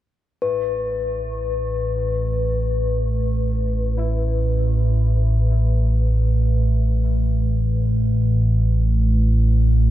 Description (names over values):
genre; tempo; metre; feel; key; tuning
dark ambient drone; free time; none; none; unclear; A4 = 440 Hz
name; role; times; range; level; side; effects
dark grand piano; arpeggios; 0.4-9.9 s; A2 to E4; -41 LUFS; left 3 dB; ping-pong delay
analog drone; drone; 0.9-9.9 s; A1 to A2; -18 LUFS; equal; lush chorus
quartz singing bowl; texture; 0.4-9.9 s; B4; -27 LUFS; left 5 dB; none
room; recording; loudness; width
light reverb; dark, warm production; -18 LUFS; side -14 dB against mid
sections
0.4-9.9 A section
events
fade-in on grand piano 0.4-9.9; filter sweep on synth drone 0.4-9.9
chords
0.4 Asus2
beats
free time